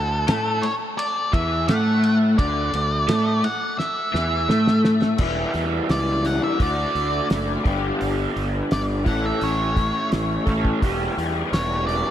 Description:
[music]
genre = psychedelic rock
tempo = 85 BPM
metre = 4/4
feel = straight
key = unclear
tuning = A4 = 438 Hz
[part]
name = octave-fuzz lead guitar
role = melody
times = 0.0-12.1 s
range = A4 to F#5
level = -26 LUFS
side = equal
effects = distortion, ping-pong delay
[part]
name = raw garage guitar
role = riff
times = 0.0-12.1 s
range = E2 to A4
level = -23 LUFS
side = equal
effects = overdrive, rotary speaker
[part]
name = fuzz fingered electric bass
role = bass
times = 0.0-12.0 s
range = E1 to A2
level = -26 LUFS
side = equal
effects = overdrive
[part]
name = cloth-damped thuddy drum kit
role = drums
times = 0.3-12.0 s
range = crash cymbal, hi-hat, kick drum, ride cymbal, snare drum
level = -26 LUFS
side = equal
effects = none
[sound]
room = moderate huge ambient reverb, RT60 4.8 s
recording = dreamy mix soaked in reverb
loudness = -19 LUFS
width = side -11 dB against mid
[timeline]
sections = 0.0-5.2 A section; 5.2-12.1 B section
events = drum fill 3.8-5.2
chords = 0.0 Dsus2; 5.2 Em; 6.6 D; 7.7 G; 9.1 A; 10.8 Em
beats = 0.28 0.98 1.68 | 2.38 3.08 3.79 4.49 | 5.19 5.89 6.60 7.30 | 8.00 8.71 9.41 10.12 | 10.82 11.53

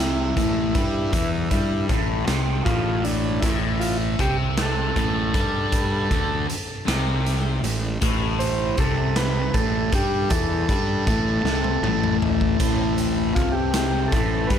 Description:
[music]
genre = psychedelic rock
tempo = 52 BPM (dotted quarters)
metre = 6/8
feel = straight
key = A minor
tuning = A4 = 441 Hz
[part]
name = combo organ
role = melody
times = 0.0-14.6 s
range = D4 to C5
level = -27 LUFS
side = right 1 dB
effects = digital delay
[part]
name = fuzz guitar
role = riff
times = 0.0-14.6 s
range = A2 to G3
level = -24 LUFS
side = left 1 dB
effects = distortion, phaser
[part]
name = fuzz fingered electric bass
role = bass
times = 0.0-14.6 s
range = A1 to G2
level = -26 LUFS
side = equal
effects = overdrive
[part]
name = raw garage drum kit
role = drums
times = 0.4-14.6 s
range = hi-hat, kick drum, snare drum, splash cymbal, toms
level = -25 LUFS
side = equal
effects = none
[part]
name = pedal harmonium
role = sustained chords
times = 12.6-14.6 s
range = E3 to A4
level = -36 LUFS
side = right 5 dB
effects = none
[sound]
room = small room ambience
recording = none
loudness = -20 LUFS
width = side -8 dB against mid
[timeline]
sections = 0.0-14.6 A section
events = transistor combo organ solo 0.0-14.6; drum fill 11.5-12.6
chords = 0.0 Am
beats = | 1.14 2.28 | 3.43 4.58 | 5.72 6.87 | 8.01 9.16 | 10.30 11.45 | 12.60 13.74

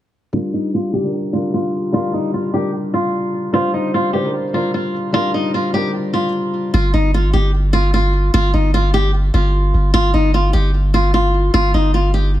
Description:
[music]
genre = hip hop, trap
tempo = 150 BPM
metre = 4/4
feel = half-time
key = unclear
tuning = A4 = 440 Hz
[part]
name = flamenco guitar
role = melody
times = 0.3-12.3 s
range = Eb4 to G4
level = -18 LUFS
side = equal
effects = low-pass filter, digital delay
[part]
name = felt-muted upright piano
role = accompaniment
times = 0.3-6.8 s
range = G3 to C5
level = -21 LUFS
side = left 1 dB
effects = low-pass filter
[part]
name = long sustained 808-style bass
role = bass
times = 6.7-12.4 s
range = G1 to Ab1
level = -15 LUFS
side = equal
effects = none
[sound]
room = light reverb, studio reverb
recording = none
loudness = -15 LUFS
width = side -13 dB against mid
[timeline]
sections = 0.3-6.7 A section; 6.7-12.4 B section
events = filter sweep 0.3-6.7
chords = 0.3 Gm7; 6.7 Fsus2/G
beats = | 0.34 0.74 1.14 1.54 | 1.94 2.34 2.74 3.14 | 3.54 3.94 4.34 4.74 | 5.14 5.54 5.94 6.34 | 6.74 7.14 7.54 7.94 | 8.34 8.74 9.14 9.54 | 9.94 10.34 10.74 11.14 | 11.54 11.94 12.34

